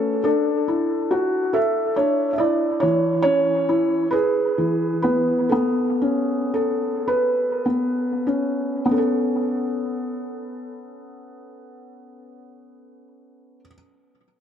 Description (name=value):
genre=children's music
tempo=30-47 BPM (dotted quarters)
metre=6/8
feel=straight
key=A major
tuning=A4 = 443 Hz
part: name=felt-muted upright piano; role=melody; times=0.0-13.7 s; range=E3 to E5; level=-20 LUFS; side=equal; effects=analog delay
room=wet spring reverb, RT60 2.2 s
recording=echo-heavy mix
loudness=-19 LUFS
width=side -8 dB against mid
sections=0.0-8.9 A section; 8.9-12.9 B section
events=slowing down 2.8-8.9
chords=0.3 Dsus2; 2.8 C#m/E; 4.1 E; 5.5 Aadd9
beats=| 0.25 1.55 | 2.83 4.13 | 5.52 7.08 | 8.91 10.91